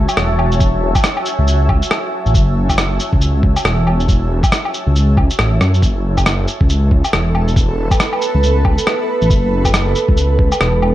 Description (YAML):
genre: future garage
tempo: 138 BPM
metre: 4/4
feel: swing 60% on 16ths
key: F# minor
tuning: A4 = 440 Hz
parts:
  - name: granular cloud pad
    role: sustained chords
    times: 0.0-10.9 s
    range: F#4 to A5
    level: -20 LUFS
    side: right 1 dB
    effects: built-in reverb, sidechain pumping
  - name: swelling detuned saw bass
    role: bass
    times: 0.0-10.9 s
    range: E1 to F#2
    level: -14 LUFS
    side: equal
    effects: none
  - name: electronic shaker, woodblock and rim click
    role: drums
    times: 0.1-10.9 s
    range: none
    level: -19 LUFS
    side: equal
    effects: none
  - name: electronic kick drum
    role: drums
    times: 0.6-10.5 s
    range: none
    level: -15 LUFS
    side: equal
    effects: none
room: light reverb, digital ambience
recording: vinyl crackle, nothing above 10.6 kHz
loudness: -12 LUFS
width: side -14 dB against mid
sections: 0.0-10.9 A section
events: none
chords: 0.0 F#m7; 5.8 Esus4